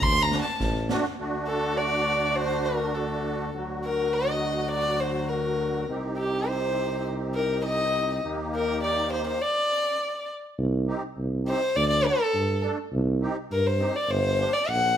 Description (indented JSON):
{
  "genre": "klezmer",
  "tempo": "102 BPM",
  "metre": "2/4",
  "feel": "straight",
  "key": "D phrygian dominant",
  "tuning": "A4 = 440 Hz",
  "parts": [
    { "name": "warm violin", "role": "melody", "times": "0.0-15.0 s", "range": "G4 to C6", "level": "-25 LUFS", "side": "left 1 dB", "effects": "none" },
    { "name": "warm tuba", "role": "bass", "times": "0.0-15.0 s", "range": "G1 to G2", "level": "-29 LUFS", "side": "equal", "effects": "none" },
    { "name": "street-band drum kit", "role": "drums", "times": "0.0-1.1 s", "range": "kick drum, snare drum", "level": "-30 LUFS", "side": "right 1 dB", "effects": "none" },
    { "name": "musette accordion", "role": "accompaniment", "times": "0.3-14.5 s", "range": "D3 to A4", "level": "-31 LUFS", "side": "right 1 dB", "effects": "none" }
  ],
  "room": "moderate stone room reverb, RT60 1.0 s",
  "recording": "band playing live in one room",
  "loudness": "-24 LUFS",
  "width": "side -9 dB against mid",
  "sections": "0.0-1.2 A section; 1.2-10.6 B section; 10.6-15.0 C section",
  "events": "violin solo 0.0-1.2",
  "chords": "0.0 D; 5.9 Cm; 8.2 Eb; 9.4 N.C.; 10.6 Cm; 11.8 D; 12.9 Cm; 14.1 Gm"
}